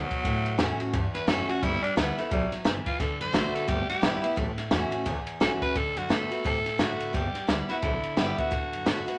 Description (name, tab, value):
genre	rockabilly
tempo	174 BPM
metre	4/4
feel	swing 60% on 8ths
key	D major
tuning	A4 = 436 Hz
part	growling tenor saxophone	melody	0.0-9.2 s	F#3 to C5	-33 LUFS	equal	none
part	picked steel-string acoustic guitar	accompaniment	0.0-9.2 s	E2 to F#4	-33 LUFS	equal	none
part	upright bass	bass	0.0-9.1 s	F#1 to C3	-38 LUFS	equal	none
part	compact cocktail drum kit	drums	0.1-9.1 s	kick drum, ride cymbal, snare drum	-32 LUFS	equal	none
room	light reverb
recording	none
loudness	-28 LUFS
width	mono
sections	0.0-5.8 A section; 5.8-9.2 B section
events	tenor saxophone solo 0.0-5.8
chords	0.2 A6; 1.6 G6; 3.0 D6; 3.7 G6; 4.4 A6; 5.8 D6; 7.1 G6; 8.5 D6